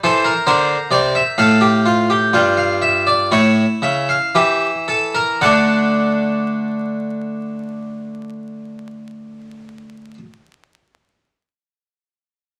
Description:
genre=classical, baroque-style 3-part fugue for harpsichord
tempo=55-67 BPM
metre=4/4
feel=straight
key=unclear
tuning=A4 = 439 Hz
part: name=harpsichord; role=solo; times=0.0-10.2 s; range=G2 to G5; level=-17 LUFS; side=equal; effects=none
room=wet studio reverb, RT60 0.8 s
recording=vinyl crackle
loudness=-16 LUFS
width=mono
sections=0.0-5.4 A section; 5.4-9.8 B section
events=slowing down 0.0-5.4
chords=0.0 E(b5, no3); 1.4 Dm/A; 3.3 A7; 5.4 D

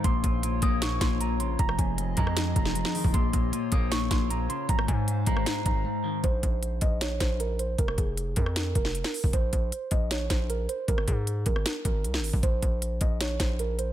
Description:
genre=hip hop, trap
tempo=155 BPM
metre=4/4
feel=half-time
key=Bb minor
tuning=A4 = 440 Hz
part: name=muted felt-like synth keys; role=melody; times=0.0-13.9 s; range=Ab4 to Eb6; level=-33 LUFS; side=right 4 dB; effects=chorus, low-pass filter, digital delay
part: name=semi-hollow electric guitar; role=accompaniment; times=0.0-6.2 s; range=F2 to Bb3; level=-31 LUFS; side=left 3 dB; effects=none
part: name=warbly tape-like pad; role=sustained chords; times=0.0-6.2 s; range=F3 to F5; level=-37 LUFS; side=left 3 dB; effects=chorus, built-in reverb
part: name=distorted 808-style bass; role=bass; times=0.0-13.9 s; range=F1 to Ab2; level=-30 LUFS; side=equal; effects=distortion
part: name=trap drum kit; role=drums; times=0.0-13.9 s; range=hi-hat, kick drum, rim click, snare drum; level=-27 LUFS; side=equal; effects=none
room=digital ambience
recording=none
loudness=-25 LUFS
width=side -12 dB against mid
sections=0.0-6.2 A section; 6.2-13.9 B section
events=break 5.8-6.2; filter sweep on synth keys 6.2-13.9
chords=0.0 Bbmadd9; 1.6 Fm7; 3.1 Bbmadd9; 4.7 Ab6; 6.2 Bbsus2; 7.8 Fm; 9.3 Bbsus2; 10.9 N.C.; 12.4 Bbsus2

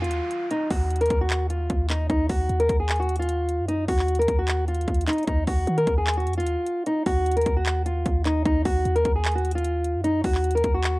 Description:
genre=hip hop, trap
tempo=151 BPM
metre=4/4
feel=half-time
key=Eb minor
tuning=A4 = 440 Hz
part: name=fingerpicked old ladder-braced acoustic guitar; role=melody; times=0.0-11.0 s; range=Eb4 to Bb4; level=-24 LUFS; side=equal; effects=low-pass filter, cassette tape, plate reverb
part: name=clean 808-style bass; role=bass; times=0.0-11.0 s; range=Eb2 to Eb3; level=-25 LUFS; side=equal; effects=none
part: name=trap drum kit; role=drums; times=0.0-10.9 s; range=handclaps, hi-hat, kick drum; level=-27 LUFS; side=equal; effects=cassette tape
part: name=downlifter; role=sound effects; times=0.0-2.1 s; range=none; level=-42 LUFS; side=right 1 dB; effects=none
room=light reverb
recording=home recording on cassette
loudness=-21 LUFS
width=side -21 dB against mid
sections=0.0-11.0 A section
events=none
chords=0.0 Ebmadd9; 2.1 Ebm; 5.3 Ebmadd9; 8.5 Ebm

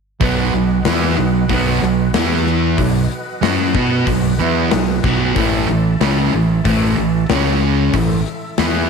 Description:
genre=classic rock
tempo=93 BPM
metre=4/4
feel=straight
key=B mixolydian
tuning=A4 = 441 Hz
part: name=tonewheel organ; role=sustained chords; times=0.2-8.9 s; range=C#4 to A5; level=-29 LUFS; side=left 1 dB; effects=slow rotary speaker, overdrive, chorus vibrato
part: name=overdriven semi-hollow guitar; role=riff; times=0.2-8.9 s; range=A2 to B4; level=-20 LUFS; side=left 10 dB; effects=phaser
part: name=sludgy distorted guitar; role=riff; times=0.2-8.9 s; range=A2 to B4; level=-17 LUFS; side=right 10 dB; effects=overdrive
part: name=modern bright fingered electric bass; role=bass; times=0.2-8.9 s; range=A1 to B2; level=-21 LUFS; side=left 1 dB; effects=none
part: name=gated 80s drum kit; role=drums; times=0.2-8.7 s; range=hi-hat, kick drum, snare drum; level=-21 LUFS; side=left 6 dB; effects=none
room=moderate echo chamber reverb, RT60 1.9 s, studio reverb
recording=1960s-style stereo with parts hard left and right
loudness=-14 LUFS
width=side -5 dB against mid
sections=0.2-8.9 A section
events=none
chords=0.2 B; 2.1 E5; 2.8 B; 5.4 A5; 7.3 C#5; 7.9 A5

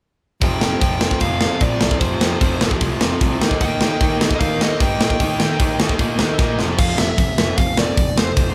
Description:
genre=punk rock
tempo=151 BPM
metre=4/4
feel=straight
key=unclear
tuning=A4 = 440 Hz
part: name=dark smooth lead guitar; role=melody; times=0.4-8.5 s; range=C5 to G5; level=-27 LUFS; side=equal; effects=overdrive
part: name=distorted electric guitar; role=riff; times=0.4-8.5 s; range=F2 to Eb4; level=-27 LUFS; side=equal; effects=distortion
part: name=distorted electric guitar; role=riff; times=0.4-6.8 s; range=F2 to Eb4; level=-28 LUFS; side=equal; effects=overdrive
part: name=fuzz picked electric bass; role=bass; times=0.4-8.5 s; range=F1 to Eb3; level=-26 LUFS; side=equal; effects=overdrive
part: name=tight metal drum kit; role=drums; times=0.4-8.5 s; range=crash cymbal, hi-hat, kick drum, snare drum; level=-20 LUFS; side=equal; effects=none
room=moderate large studio reverb, RT60 0.9 s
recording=band playing live in one room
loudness=-18 LUFS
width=mono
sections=0.4-6.8 A section; 6.8-8.5 B section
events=drum fill 6.4-6.8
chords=0.4 F5; 3.4 Eb; 6.6 F5

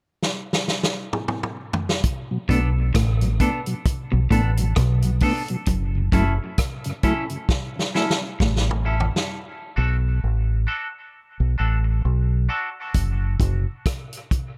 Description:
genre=dub reggae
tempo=66 BPM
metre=4/4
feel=swing 58% on 16ths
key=unclear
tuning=A4 = 440 Hz
part: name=vintage drum kit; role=drums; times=0.2-14.6 s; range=hi-hat, kick drum, rim click, snare drum, toms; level=-26 LUFS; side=equal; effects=none
part: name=mellow tonewheel organ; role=accompaniment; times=2.3-9.2 s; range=F#2 to E4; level=-29 LUFS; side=equal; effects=slow rotary speaker, high-pass filter
part: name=semi-hollow electric guitar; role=accompaniment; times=2.5-12.7 s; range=B3 to A4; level=-32 LUFS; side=equal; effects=subtle chorus, high-pass filter, dub echo
part: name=electric guitar at the edge of break-up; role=riff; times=2.5-8.7 s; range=F#2 to B2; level=-29 LUFS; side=equal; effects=dub echo
part: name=deep dub fingered electric bass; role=bass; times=2.5-13.6 s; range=F#1 to B1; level=-23 LUFS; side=equal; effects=none
room=light reverb, small room ambience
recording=none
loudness=-23 LUFS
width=mono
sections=0.0-2.0 A section; 2.0-9.3 B section; 9.3-14.6 C section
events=drum fill 0.2-2.0, 7.5-9.3; filter sweep 5.7-12.9; part muted 9.3-12.9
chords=0.0 N.C.; 2.0 Bm7; 5.7 F#m7; 9.3 Bm7; 12.9 N.C.

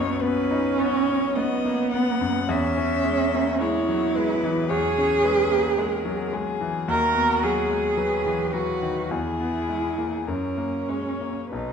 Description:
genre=classical, slow romantic movement for piano trio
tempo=46-56 BPM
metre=4/4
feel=rubato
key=B major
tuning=A4 = 441 Hz
part: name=warm violin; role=melody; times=0.0-11.7 s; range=F#4 to F#5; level=-30 LUFS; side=left 6 dB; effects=none
part: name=warm cello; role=second line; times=0.0-11.7 s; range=B3 to A#4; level=-24 LUFS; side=right 4 dB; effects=none
part: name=bright concert grand piano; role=accompaniment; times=0.0-11.7 s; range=B1 to D#4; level=-27 LUFS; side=left 3 dB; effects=none
room=wet recital hall reverb, RT60 1.5 s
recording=dark, warm production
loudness=-21 LUFS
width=side -6 dB against mid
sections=0.0-11.7 A section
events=none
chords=0.0 B; 2.5 C#m/E; 6.9 B/D#; 9.1 E; 10.3 F#add9

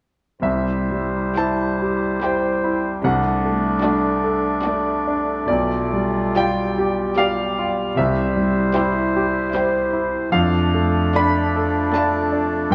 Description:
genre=classical, romantic movement for piano and orchestra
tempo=60-79 BPM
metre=3/4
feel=rubato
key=C major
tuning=A4 = 439 Hz
part: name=clear concert grand piano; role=melody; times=0.4-12.7 s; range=B1 to B5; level=-22 LUFS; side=equal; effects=none
part: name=clear clarinet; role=second line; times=0.4-12.7 s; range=D4 to F4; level=-30 LUFS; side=equal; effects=none
part: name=warm oboe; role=second line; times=0.4-12.7 s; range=C5 to D5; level=-29 LUFS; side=equal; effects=none
part: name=mellow bassoon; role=accompaniment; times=0.4-12.7 s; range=G3 to A3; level=-30 LUFS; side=equal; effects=none
part: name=rich studio cello section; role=bass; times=0.4-12.7 s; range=F2 to C3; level=-30 LUFS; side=equal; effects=none
part: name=warm studio violin section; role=second line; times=1.4-12.5 s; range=F4 to D5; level=-33 LUFS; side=equal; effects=none
part: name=rich studio viola section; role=accompaniment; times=1.4-12.5 s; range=G3 to F4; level=-32 LUFS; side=equal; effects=none
room=wet recital hall reverb, RT60 1.6 s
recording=none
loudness=-20 LUFS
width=mono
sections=0.4-12.7 A section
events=none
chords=0.4 C; 3.0 D7/C; 5.5 G7/B; 8.0 C; 10.3 Dm/F

